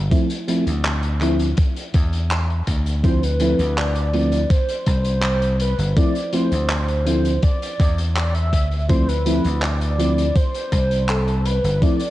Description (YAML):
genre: vaporwave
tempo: 82 BPM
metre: 4/4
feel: straight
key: D dorian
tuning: A4 = 440 Hz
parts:
  - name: vintage slap bass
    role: bass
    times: 0.0-11.8 s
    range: G1 to E2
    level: -20 LUFS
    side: equal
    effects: none
  - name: mellow FM electric piano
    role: accompaniment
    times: 0.1-12.0 s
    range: F3 to E4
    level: -22 LUFS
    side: equal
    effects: analog chorus
  - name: electronic kick drum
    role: drums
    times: 0.1-12.0 s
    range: none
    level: -18 LUFS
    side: equal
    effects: overdrive, vintage 12-bit sampler grit
  - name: loose indie drum kit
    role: drums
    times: 0.1-12.1 s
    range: handclaps, hi-hat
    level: -28 LUFS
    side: equal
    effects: vintage 12-bit sampler grit, gated reverb
  - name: warm velvety synth lead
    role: melody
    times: 3.0-12.1 s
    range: A4 to E5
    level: -25 LUFS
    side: equal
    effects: chorus, tape echo
room: light reverb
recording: cassette tape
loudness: -17 LUFS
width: side -15 dB against mid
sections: 0.0-12.1 A section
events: none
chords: 0.1 Dm7; 1.6 Dsus2; 3.0 Dm7; 4.5 C5; 6.0 Dm7; 7.4 Dsus2; 8.9 Dm7; 10.4 C5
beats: | 0.11 0.84 1.58 2.31 | 3.04 3.77 4.50 5.23 | 5.97 6.70 7.43 8.16 | 8.89 9.62 10.36 11.09 | 11.82